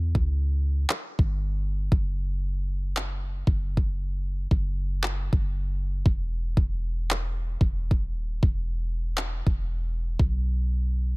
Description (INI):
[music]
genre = contemporary R&B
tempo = 58 BPM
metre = 4/4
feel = swing 58% on 16ths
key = unclear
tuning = A4 = 442 Hz
[part]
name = soft 808-style bass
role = bass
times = 0.0-11.2 s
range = D#1 to E2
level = -27 LUFS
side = equal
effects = none
[part]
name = smooth R&B drum kit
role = drums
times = 0.1-10.5 s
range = handclaps, kick drum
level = -24 LUFS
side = equal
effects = none
[sound]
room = little or no reverb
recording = dense, heavily limited modern master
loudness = -24 LUFS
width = side -25 dB against mid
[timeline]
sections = 0.0-11.2 A section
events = none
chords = none